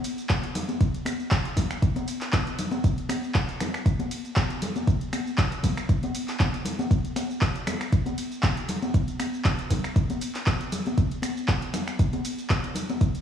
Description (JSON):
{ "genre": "house", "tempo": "118 BPM", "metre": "4/4", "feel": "swing 54% on 16ths", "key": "none", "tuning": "none", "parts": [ { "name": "deep house drum kit", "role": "drums", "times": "0.0-13.2 s", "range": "finger snaps, handclaps, hi-hat, ride cymbal, shaker", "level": "-32 LUFS", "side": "right 1 dB", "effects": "none" }, { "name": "electronic kick drum", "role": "drums", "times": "0.3-13.1 s", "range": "none", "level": "-24 LUFS", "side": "equal", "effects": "none" }, { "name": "congas", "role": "percussion", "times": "0.3-13.0 s", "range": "none", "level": "-31 LUFS", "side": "left 2 dB", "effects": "none" } ], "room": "light reverb, digital ambience", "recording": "studio ambience", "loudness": "-24 LUFS", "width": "side -9 dB against mid", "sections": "0.0-13.2 A section", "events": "none", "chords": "none", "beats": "0.30 | 0.81 1.31 1.82 2.33 | 2.84 3.35 3.86 4.37 | 4.87 5.38 5.89 6.40 | 6.91 7.42 7.92 8.43 | 8.94 9.45 9.96 10.47 | 10.98 11.48 11.99 12.50 | 13.01" }